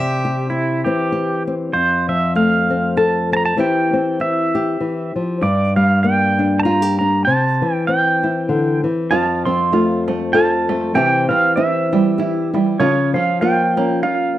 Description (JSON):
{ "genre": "acoustic folk duo or small band", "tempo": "98 BPM", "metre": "3/4", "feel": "swing 57% on 8ths", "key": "F major", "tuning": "A4 = 441 Hz", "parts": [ { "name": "picked steel-string acoustic guitar", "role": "melody", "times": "0.0-1.1 s", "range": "E5", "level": "-29 LUFS", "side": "left 1 dB", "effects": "none" }, { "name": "pedal steel guitar", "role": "second line", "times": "0.0-14.4 s", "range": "E4 to C6", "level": "-18 LUFS", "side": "right 3 dB", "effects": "slapback echo" }, { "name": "nylon-string guitar", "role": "accompaniment", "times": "0.0-14.4 s", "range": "F2 to A4", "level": "-18 LUFS", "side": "left 2 dB", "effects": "none" }, { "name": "open-back banjo", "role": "arpeggios", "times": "9.1-14.4 s", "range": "E3 to F4", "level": "-20 LUFS", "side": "right 4 dB", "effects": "slapback echo" } ], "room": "small room reverb", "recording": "dry, close 1970s-style studio recording", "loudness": "-15 LUFS", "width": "side -13 dB against mid", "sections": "0.0-1.7 A section; 1.7-14.4 B section", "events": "pedal steel guitar solo 1.7-14.4", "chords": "0.0 C; 1.7 F; 3.6 C/E; 5.4 Gm; 7.3 C; 9.1 F; 11.0 C; 12.8 Bbm/Db" }